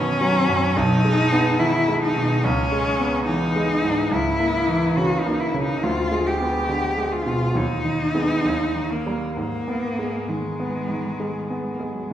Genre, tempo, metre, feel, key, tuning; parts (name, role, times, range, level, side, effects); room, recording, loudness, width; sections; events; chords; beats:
classical, romantic duo for cello and grand piano; 65-72 BPM; 4/4; rubato; G# minor; A4 = 441 Hz
rich cello; melody; 0.0-12.1 s; F#3 to G4; -22 LUFS; left 1 dB
bright grand piano; accompaniment; 0.0-12.1 s; B1 to B3; -22 LUFS; right 1 dB
wet recital hall reverb, RT60 1.6 s; heard from further back in the room; -19 LUFS; side -11 dB against mid
0.0-12.1 A section
0.0 B; 0.8 G#m/B; 2.4 C#m7; 4.1 A#dim/C#; 5.8 Ddim7; 7.6 G#m/D#; 8.4 D#; 9.4 G#m
0.76 1.59 | 2.43 3.27 4.11 4.97 | 5.83 6.68 7.55 8.44 | 9.37 10.29 11.20 12.12